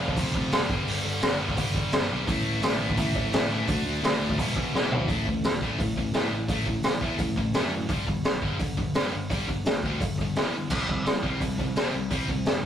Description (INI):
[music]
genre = punk rock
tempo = 171 BPM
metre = 4/4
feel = straight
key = unclear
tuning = A4 = 440 Hz
[part]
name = tight distorted guitar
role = riff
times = 0.0-12.6 s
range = E2 to D4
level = -30 LUFS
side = equal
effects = distortion
[part]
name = picked electric bass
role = bass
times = 0.0-12.7 s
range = E1 to C3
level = -32 LUFS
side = equal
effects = none
[part]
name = raw garage drum kit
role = drums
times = 0.1-12.7 s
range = crash cymbal, hi-hat, kick drum, snare drum, toms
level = -26 LUFS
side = equal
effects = none
[sound]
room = moderate small room ambience, RT60 0.5 s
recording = rough rehearsal-room recording, tube saturation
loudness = -24 LUFS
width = side -9 dB against mid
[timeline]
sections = 0.0-5.1 A section; 5.1-12.7 B section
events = drum fill 4.7-5.1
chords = 0.0 F5; 0.7 G5; 2.3 A5; 3.7 D5; 4.4 E5; 5.1 A5; 7.9 G5; 10.7 C5